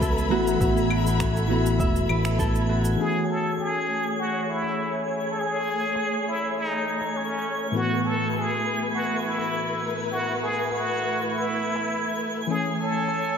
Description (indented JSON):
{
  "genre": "sunset chillout",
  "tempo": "101 BPM",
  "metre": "4/4",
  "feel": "swing 53% on 16ths",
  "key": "A major",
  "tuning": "A4 = 440 Hz",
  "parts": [
    { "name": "mellow FM electric piano", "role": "accompaniment", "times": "0.0-13.4 s", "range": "A2 to G#5", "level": "-29 LUFS", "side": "left 1 dB", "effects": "chorus, auto-pan, ping-pong delay" },
    { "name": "warm studio string section", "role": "sustained chords", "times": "0.0-13.4 s", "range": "A3 to B5", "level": "-30 LUFS", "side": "left 1 dB", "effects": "low-pass filter" },
    { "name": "Celtic harp", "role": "arpeggios", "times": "0.0-5.1 s", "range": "F#4 to E5", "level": "-31 LUFS", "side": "equal", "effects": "ping-pong delay" },
    { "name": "fingered electric bass", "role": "bass", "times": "0.0-2.9 s", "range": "E1 to C#2", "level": "-24 LUFS", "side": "equal", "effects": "none" },
    { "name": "electronic kick drum", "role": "drums", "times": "0.0-2.5 s", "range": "none", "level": "-27 LUFS", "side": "equal", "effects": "overdrive" },
    { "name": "smooth R&B drum kit", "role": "drums", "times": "0.0-13.4 s", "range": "claves, crash cymbal, finger snaps, shaker", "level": "-36 LUFS", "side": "equal", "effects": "low-pass filter on perc, low-pass filter on snare, low-pass filter on cymbals" },
    { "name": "twinkling granular texture", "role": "texture", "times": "0.0-13.4 s", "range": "G#6", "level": "-36 LUFS", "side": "right 2 dB", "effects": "built-in reverb" },
    { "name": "trumpet with plunger mute", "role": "melody", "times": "3.0-13.4 s", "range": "C#4 to A4", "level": "-27 LUFS", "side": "equal", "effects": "vintage 12-bit sampler grit, tape echo" }
  ],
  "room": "wet plate reverb, RT60 2.4 s",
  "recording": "dreamy mix soaked in reverb",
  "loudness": "-22 LUFS",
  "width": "side -7 dB against mid",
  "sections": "0.0-3.0 A section; 3.0-13.4 B section",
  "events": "filter sweep on string section 3.0-13.4",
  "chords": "0.0 B7sus4/A; 3.0 Amaj7; 7.7 B7sus4/A; 12.5 Amaj7",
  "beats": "0.02 | 0.61 1.20 1.80 2.39 | 2.99 3.58 4.17 4.77 | 5.36 5.96 6.55 7.14 | 7.74 8.33 8.93 9.52 | 10.12 10.71 11.30 11.90 | 12.49 13.09"
}